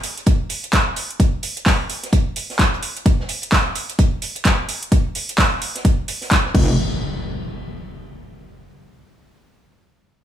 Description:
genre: bass house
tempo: 129 BPM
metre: 4/4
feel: swing 60% on 16ths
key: unclear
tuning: A4 = 440 Hz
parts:
  - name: big-room dance drum kit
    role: drums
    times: 0.0-6.7 s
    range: crash cymbal, handclaps, hi-hat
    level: -21 LUFS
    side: right 1 dB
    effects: studio reverb
  - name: open jazz drum kit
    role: drums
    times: 0.0-6.5 s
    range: hi-hat, snare drum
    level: -30 LUFS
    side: right 2 dB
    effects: high-pass filter on hats, studio reverb, high-pass filter on snare, high-pass filter on room
  - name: electronic kick drum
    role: drums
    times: 0.3-6.7 s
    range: none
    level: -17 LUFS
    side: equal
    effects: studio reverb
  - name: metallic wobble bass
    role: bass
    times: 6.5-6.8 s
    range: F1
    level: -17 LUFS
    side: equal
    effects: chorus, overdrive, sidechain pumping
  - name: impact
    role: sound effects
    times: 6.5-8.4 s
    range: none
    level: -26 LUFS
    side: left 1 dB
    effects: none
room: small room ambience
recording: studio reverb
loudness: -17 LUFS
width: side -11 dB against mid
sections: 0.0-6.8 A section; 6.8-8.6 B section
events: none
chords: none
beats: 0.27 0.73 | 1.20 1.66 2.13 2.59 | 3.06 3.52 3.99 4.45 | 4.92 5.38 5.85 6.31 | 6.78 7.24 7.71 8.17

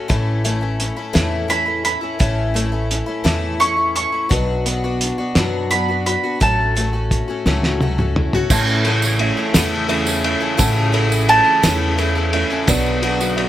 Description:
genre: indie folk with a building arrangement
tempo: 57 BPM (dotted quarters)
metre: 6/8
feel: straight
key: unclear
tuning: A4 = 440 Hz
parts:
  - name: fingerpicked steel-string acoustic guitar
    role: accompaniment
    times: 0.0-10.6 s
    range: A2 to F#4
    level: -27 LUFS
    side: left 1 dB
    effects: none
  - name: picked twelve-string acoustic guitar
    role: accompaniment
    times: 0.0-13.5 s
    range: A2 to A4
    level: -24 LUFS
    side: left 5 dB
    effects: none
  - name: upright bass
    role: bass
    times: 0.1-13.5 s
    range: A1 to F#2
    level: -21 LUFS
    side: equal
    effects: none
  - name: cloth-damped thuddy drum kit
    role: drums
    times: 0.1-13.5 s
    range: crash cymbal, hi-hat, kick drum, ride cymbal, snare drum, toms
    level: -19 LUFS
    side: equal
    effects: none
  - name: bowl-back mandolin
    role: melody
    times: 1.5-8.1, 11.3-12.3 s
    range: A5 to C#6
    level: -17 LUFS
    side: right 2 dB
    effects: none
  - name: felt-muted upright piano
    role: accompaniment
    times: 8.5-13.5 s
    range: A1 to F#5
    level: -24 LUFS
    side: right 9 dB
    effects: none
  - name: rich chamber string section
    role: sustained chords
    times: 8.5-13.5 s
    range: C#3 to F#4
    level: -26 LUFS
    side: left 1 dB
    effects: none
  - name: tambourine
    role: percussion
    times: 8.5-13.4 s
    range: none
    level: -27 LUFS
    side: right 8 dB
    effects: none
room: light reverb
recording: none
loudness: -15 LUFS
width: side -12 dB against mid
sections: 0.0-8.5 A section; 8.5-13.5 A section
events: drum fill 7.5-8.5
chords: 0.1 A; 4.3 Bm; 6.4 F#m/A; 12.7 Bm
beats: | 0.10 1.15 | 2.21 3.26 | 4.31 5.36 | 6.41 7.46 | 8.51 9.55 | 10.60 11.64 | 12.69

